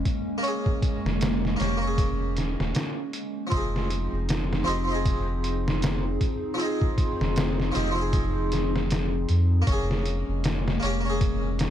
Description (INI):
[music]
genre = trip hop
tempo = 78 BPM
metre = 4/4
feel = swing 57% on 16ths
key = F minor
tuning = A4 = 440 Hz
[part]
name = harpsichord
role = accompaniment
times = 0.0-11.7 s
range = F3 to Ab4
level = -31 LUFS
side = equal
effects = tremolo, vintage 12-bit sampler grit, tape echo
[part]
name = warbly tape-like pad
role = sustained chords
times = 0.0-11.7 s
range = F3 to Ab4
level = -30 LUFS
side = left 1 dB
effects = chorus, built-in reverb, vintage 12-bit sampler grit
[part]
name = soft dub sub bass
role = bass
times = 0.0-11.7 s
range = Eb1 to F2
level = -27 LUFS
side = equal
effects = tube saturation
[part]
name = trip hop sampler-style drum kit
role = drums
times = 0.1-11.7 s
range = hi-hat, kick drum, snare drum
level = -27 LUFS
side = equal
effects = none
[sound]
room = little or no reverb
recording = none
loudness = -23 LUFS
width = side -10 dB against mid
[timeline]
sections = 0.0-11.7 A section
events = none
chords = 0.0 Bbm7/F; 3.5 Fm7; 9.7 Bbm7/F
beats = | 0.44 1.21 1.98 2.75 | 3.52 4.29 5.06 5.83 | 6.60 7.37 8.13 8.90 | 9.67 10.44 11.21